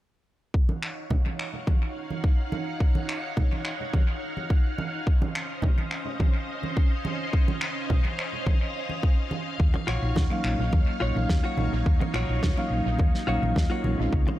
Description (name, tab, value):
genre	nu-disco, nu disco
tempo	106 BPM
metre	4/4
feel	straight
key	Eb dorian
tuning	A4 = 440 Hz
part	string machine, full ensemble	sustained chords	0.5-14.4 s	Db4 to Gb5	-34 LUFS	equal	phaser, ensemble chorus, sidechain pumping
part	electronic kick drum	drums	0.5-14.2 s	none	-23 LUFS	equal	none
part	congas	percussion	0.7-14.4 s	none	-34 LUFS	right 3 dB	analog delay
part	finger snaps and snare drum	drums	0.8-13.7 s	none	-34 LUFS	equal	analog delay
part	hollow-body short-scale fingered electric bass	bass	9.6-14.2 s	Bb1 to Eb2	-27 LUFS	equal	tube saturation
part	direct-recorded clean electric guitar	riff	9.7-14.3 s	F4 to Db5	-34 LUFS	left 2 dB	wide subtle chorus, analog delay
part	mellow reed electric piano	accompaniment	10.3-14.4 s	Gb3 to F5	-30 LUFS	equal	fast tremolo, analog delay
room	little or no reverb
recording	echo-heavy mix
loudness	-23 LUFS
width	side -15 dB against mid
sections	0.5-14.4 A section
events	none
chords	0.5 Ebm9; 5.1 Dbmaj9; 9.6 Ebm9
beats	| 0.54 1.11 1.68 2.24 | 2.81 3.37 3.94 4.50 | 5.07 5.64 6.20 6.77 | 7.33 7.90 8.47 9.03 | 9.60 10.16 10.73 11.30 | 11.86 12.43 13.00 13.56 | 14.13